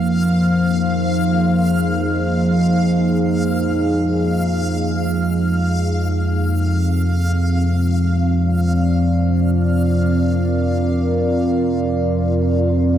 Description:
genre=dark ambient drone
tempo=free time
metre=none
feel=none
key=unclear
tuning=A4 = 440 Hz
part: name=deep dark ambient pad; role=sustained chords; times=0.0-13.0 s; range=F3 to D5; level=-18 LUFS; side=equal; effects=chorus, built-in reverb
part: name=deep rumbling drone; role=drone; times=0.0-13.0 s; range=F2 to F3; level=-19 LUFS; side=equal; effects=built-in reverb
part: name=backwards swelling texture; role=texture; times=0.0-13.0 s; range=F5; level=-27 LUFS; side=equal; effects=built-in reverb
room=wet cathedral reverb, RT60 5.3 s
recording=none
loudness=-15 LUFS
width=side -10 dB against mid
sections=0.0-13.0 A section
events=fade-out on synth texture 0.0-13.0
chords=0.0 Fm; 5.8 Bb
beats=free time

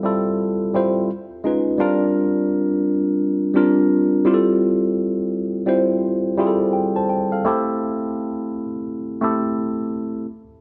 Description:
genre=R&B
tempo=85 BPM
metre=4/4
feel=swing 61% on 16ths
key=unclear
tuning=A4 = 441 Hz
part: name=tine electric piano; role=solo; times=0.0-10.3 s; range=G3 to A5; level=-20 LUFS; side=equal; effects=phaser
room=moderate echo chamber reverb, RT60 1.8 s, digital ambience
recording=none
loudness=-20 LUFS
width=mono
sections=0.0-10.3 A section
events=none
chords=0.0 Fmaj9; 1.1 C#9; 1.8 C9sus4; 4.3 Fmaj9; 7.4 Am7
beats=0.37 1.08 | 1.78 2.49 3.20 3.90 | 4.61 5.31 6.02 6.72 | 7.43 8.14 8.84 9.55 | 10.26

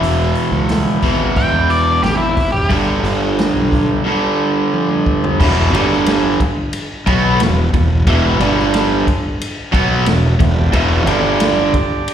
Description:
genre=blues rock power trio and southern rock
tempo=90 BPM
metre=4/4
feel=straight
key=unclear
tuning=A4 = 440 Hz
part: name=raw garage guitar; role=riff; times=0.0-11.7 s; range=E2 to B3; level=-15 LUFS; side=right 1 dB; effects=overdrive, slapback echo
part: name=fuzz fingered electric bass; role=bass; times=0.0-11.7 s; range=E1 to E2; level=-17 LUFS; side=equal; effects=overdrive
part: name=vintage drum kit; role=drums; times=0.0-12.1 s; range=crash cymbal, hi-hat, kick drum, ride cymbal, snare drum, toms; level=-20 LUFS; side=equal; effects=none
part: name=octave-fuzz lead guitar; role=melody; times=1.4-2.7 s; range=E4 to G5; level=-17 LUFS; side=equal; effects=distortion, slapback echo
part: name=overdriven tonewheel organ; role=sustained chords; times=10.4-12.1 s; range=A3 to D5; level=-24 LUFS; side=right 5 dB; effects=stopped rotary speaker
room=small room ambience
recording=live gig heard through the venue's PA, recital hall reverb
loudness=-13 LUFS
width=side -9 dB against mid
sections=0.0-5.4 A section; 5.4-12.1 B section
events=drum fill 4.7-5.4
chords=0.0 E; 2.7 G5; 5.4 E5; 5.7 G5; 7.1 E5; 8.4 G5; 9.7 E5; 11.1 G5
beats=| 0.02 0.69 1.36 2.04 | 2.71 3.38 4.05 4.72 | 5.39 6.06 6.73 7.39 | 8.06 8.73 9.40 10.06 | 10.73 11.39 12.06

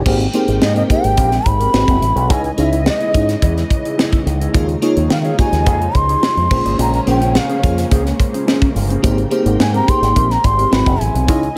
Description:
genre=polished 1980s jazz-funk pop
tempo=107 BPM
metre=4/4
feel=straight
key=Ab major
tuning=A4 = 439 Hz
part: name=bell-like FM electric piano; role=accompaniment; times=0.0-11.6 s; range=Bb3 to C6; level=-23 LUFS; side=equal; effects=analog chorus
part: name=dark studio string section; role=sustained chords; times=0.0-11.6 s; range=C3 to G5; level=-28 LUFS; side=equal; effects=none
part: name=mellow electric guitar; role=riff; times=0.0-11.6 s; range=C4 to Eb5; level=-25 LUFS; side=equal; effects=analog chorus
part: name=fingered electric bass with an envelope filter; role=bass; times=0.1-11.5 s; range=Gb1 to Eb3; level=-20 LUFS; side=equal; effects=none
part: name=tight funk drum kit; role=drums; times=0.1-11.6 s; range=crash cymbal, hi-hat, kick drum, snare drum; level=-20 LUFS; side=equal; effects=gated reverb
part: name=mellow bansuri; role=melody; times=0.6-11.6 s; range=Eb5 to C6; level=-21 LUFS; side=equal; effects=none
room=small room ambience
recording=none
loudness=-15 LUFS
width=mono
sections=0.1-11.6 A section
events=FM electric piano fill 7.9-9.0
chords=0.1 Abmaj9; 1.7 Ab7alt; 2.3 Dbmadd9; 4.5 Eb9sus4; 6.5 Bbm9; 9.0 Abmaj9; 10.7 Ab7alt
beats=| 0.06 0.62 1.18 1.74 | 2.30 2.86 3.42 3.98 | 4.55 5.11 5.67 6.23 | 6.79 7.35 7.91 8.47 | 9.04 9.60 10.16 10.72 | 11.28

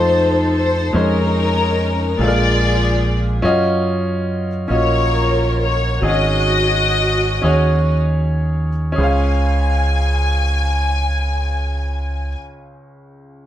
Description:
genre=slow gospel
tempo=37-48 BPM (dotted quarters)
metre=6/8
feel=straight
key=Db major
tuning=A4 = 439 Hz
part: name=warm studio string section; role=melody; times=0.0-12.4 s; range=Db4 to Ab5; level=-19 LUFS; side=left 2 dB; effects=none
part: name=clear baby grand piano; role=accompaniment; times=0.0-13.5 s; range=Db2 to F5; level=-22 LUFS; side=equal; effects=none
part: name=fingered electric bass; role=bass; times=0.0-12.3 s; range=Ab1 to Gb2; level=-18 LUFS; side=equal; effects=none
room=moderate studio reverb, RT60 0.8 s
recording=band playing live in one room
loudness=-15 LUFS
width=side -11 dB against mid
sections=0.0-9.0 A section; 9.0-12.3 B section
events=slowing down 3.4-9.0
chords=0.0 F7; 0.9 Bbm11/F; 2.2 Bb7; 3.4 Ebm9/Gb; 6.0 Ab7sus4; 9.0 Dbmaj7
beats=| 0.94 2.19 | 3.44 4.70 | 6.02 7.43 | 8.98 10.62

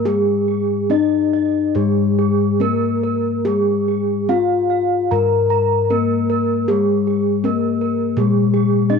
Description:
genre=Javanese gamelan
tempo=70-84 BPM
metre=4/4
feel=straight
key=unclear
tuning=A4 = 440 Hz
part: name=gamelan-type bronze metallophone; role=melody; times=0.0-9.0 s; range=Ab3-45c to Bb4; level=-18 LUFS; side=left 9 dB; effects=none
part: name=gamelan-type bronze metallophone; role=arpeggios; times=0.0-9.0 s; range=Ab4-45c to Bb5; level=-21 LUFS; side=right 12 dB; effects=none
part: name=gamelan-type bossed gongs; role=bass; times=0.0-9.0 s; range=Ab2-45c to Ab4-45c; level=-22 LUFS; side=right 2 dB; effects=none
room=moderate echo chamber reverb, RT60 1.6 s, studio reverb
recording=1960s-style stereo with parts hard left and right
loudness=-15 LUFS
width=side -5 dB against mid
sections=0.0-9.0 A section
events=none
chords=none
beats=| 0.05 0.90 1.75 2.60 | 3.45 4.29 5.11 5.91 | 6.68 7.44 8.18 8.90

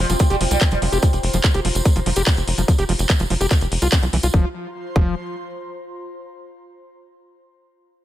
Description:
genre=psychedelic trance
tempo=145 BPM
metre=4/4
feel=straight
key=unclear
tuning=A4 = 442 Hz
part: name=sitar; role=melody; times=0.0-1.0 s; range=C3 to G3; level=-26 LUFS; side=right 2 dB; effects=phaser, sidechain pumping, ping-pong delay
part: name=tight sequencer bass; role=bass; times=0.0-5.2 s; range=F1 to C2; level=-21 LUFS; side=equal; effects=none
part: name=airy breathy pad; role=texture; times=0.0-6.0 s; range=F4 to C6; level=-33 LUFS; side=left 1 dB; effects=chorus, sidechain pumping
part: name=overdriven acid bass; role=riff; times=0.1-5.2 s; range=E3 to G4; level=-26 LUFS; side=equal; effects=distortion, auto-pan, sidechain pumping, tape echo
part: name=drum and bass drum kit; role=drums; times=0.1-4.3 s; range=handclaps, hi-hat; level=-25 LUFS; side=equal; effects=none
part: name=tambourine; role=percussion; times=0.1-4.3 s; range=none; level=-30 LUFS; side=right 3 dB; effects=none
part: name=electronic kick drum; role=drums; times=0.2-5.0 s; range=none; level=-16 LUFS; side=equal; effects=none
room=little or no reverb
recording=none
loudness=-16 LUFS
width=side -13 dB against mid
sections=0.0-4.3 A section; 4.3-6.0 B section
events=fade-out on analog synth pad 0.0-4.3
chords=0.0 F5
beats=0.20 0.61 | 1.03 1.44 1.85 2.27 | 2.68 3.10 3.51 3.92 | 4.34 4.75 5.17 5.58

